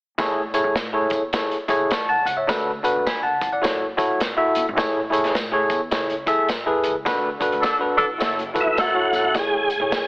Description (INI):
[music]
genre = uptempo 1960s-style soul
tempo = 105 BPM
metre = 4/4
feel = swing 60% on 8ths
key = A major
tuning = A4 = 436 Hz
[part]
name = bell-like tine electric piano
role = accompaniment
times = 0.2-10.1 s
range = A2 to C#6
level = -21 LUFS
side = equal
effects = wide subtle chorus
[part]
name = upright bass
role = bass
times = 0.2-10.1 s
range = F#1 to D3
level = -37 LUFS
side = equal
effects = none
[part]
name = crunchy breakbeat drum kit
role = drums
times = 0.2-10.1 s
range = hi-hat, kick drum, snare drum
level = -27 LUFS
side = equal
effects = none
[part]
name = tambourine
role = percussion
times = 0.2-10.1 s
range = none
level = -39 LUFS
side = right 1 dB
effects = none
[part]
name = mellow horn section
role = second line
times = 7.6-9.3 s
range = F#3 to A4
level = -21 LUFS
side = equal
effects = none
[part]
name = tonewheel organ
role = melody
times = 8.6-10.1 s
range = E4 to G#4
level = -20 LUFS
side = equal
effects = chorus vibrato, fast rotary speaker
[sound]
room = light reverb, small room reverb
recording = heavily compressed radio sound, multiband compression, telephone sound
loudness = -19 LUFS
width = side -23 dB against mid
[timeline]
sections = 0.2-9.4 A section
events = band accent 7.1-9.4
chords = 0.2 Amaj7; 2.5 D6; 3.6 F#m7; 4.8 Amaj7; 7.1 D6; 8.2 F#m7; 9.4 Amaj7